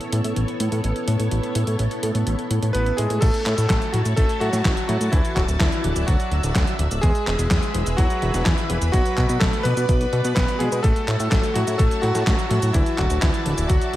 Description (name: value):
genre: italo disco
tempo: 126 BPM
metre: 4/4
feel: straight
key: A major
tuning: A4 = 441 Hz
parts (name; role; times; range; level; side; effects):
- string machine, full ensemble; sustained chords; 0.0-14.0 s; B3 to B5; -29 LUFS; equal; ensemble chorus
- detuned 8-bit digital drum machine; drums; 0.0-14.0 s; cabasa, crash cymbal, handclaps, hi-hat, snare drum; -27 LUFS; equal; gated reverb
- fat analog bass; bass; 0.1-14.0 s; D1 to B2; -22 LUFS; equal; none
- bright electric grand piano; melody; 2.7-14.0 s; E3 to B4; -25 LUFS; equal; tape echo
- electronic kick drum; drums; 3.2-13.8 s; none; -21 LUFS; equal; none
room: little or no reverb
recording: none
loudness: -18 LUFS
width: side -14 dB against mid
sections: 0.0-3.2 A section; 3.2-14.0 B section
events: none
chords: 0.0 Aadd9; 3.2 A6; 5.1 Dadd9; 7.0 E; 8.9 Bm; 10.8 A6; 12.7 Dadd9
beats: 0.36 0.84 | 1.32 1.79 2.27 2.75 | 3.22 3.70 4.17 4.65 | 5.13 5.60 6.08 6.55 | 7.03 7.51 7.98 8.46 | 8.94 9.41 9.89 10.37 | 10.84 11.32 11.79 12.27 | 12.75 13.22 13.70